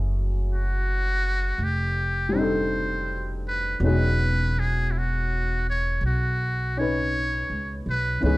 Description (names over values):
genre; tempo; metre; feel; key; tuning
jazz ballad; 54 BPM; 4/4; swing 67% on 8ths; unclear; A4 = 440 Hz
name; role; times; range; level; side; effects
dark upright piano; accompaniment; 0.0-8.4 s; E3 to B4; -29 LUFS; left 2 dB; none
upright bass; bass; 0.0-8.4 s; E1 to C#2; -25 LUFS; equal; none
trumpet with metal mute; melody; 0.5-8.4 s; E4 to C#5; -27 LUFS; equal; plate reverb
room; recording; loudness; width
light reverb; dark, warm production; -22 LUFS; side -20 dB against mid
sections
0.0-8.4 A section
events
none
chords
0.0 F#m9; 1.6 F13; 3.8 Emaj13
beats
0.49 1.59 2.70 | 3.81 4.92 6.02 7.12 | 8.22